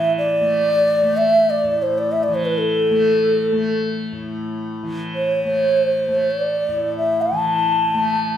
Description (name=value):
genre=indian classical, Hindustani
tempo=free time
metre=none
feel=none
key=unclear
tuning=A4 = 440 Hz
part: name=breathy mellow bansuri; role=melody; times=0.0-8.4 s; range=A4 to A5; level=-17 LUFS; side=equal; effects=none
part: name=tanpura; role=drone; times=0.0-8.4 s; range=A2 to A3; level=-25 LUFS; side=left 2 dB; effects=none
room=wet large studio reverb, RT60 0.8 s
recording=band playing live in one room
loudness=-16 LUFS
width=side -10 dB against mid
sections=0.0-4.8 A section; 4.8-8.4 A section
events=none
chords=none